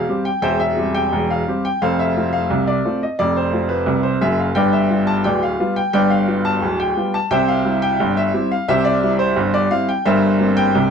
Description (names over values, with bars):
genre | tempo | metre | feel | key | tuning
ragtime piano | 87 BPM | 2/4 | straight | C major | A4 = 440 Hz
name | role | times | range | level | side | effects
clear upright piano | solo | 0.0-10.9 s | D1 to A5 | -16 LUFS | equal | none
room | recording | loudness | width
wet studio ambience, RT60 0.5 s | dark, warm production | -16 LUFS | side -7 dB against mid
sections
0.0-10.9 A section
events
none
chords
0.0 C/E; 1.8 F; 4.6 G7; 7.3 C; 10.1 C5/G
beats
| 0.42 1.11 | 1.80 2.49 | 3.18 3.87 | 4.56 5.25 | 5.94 6.62 | 7.31 7.99 | 8.68 9.37 | 10.05 10.74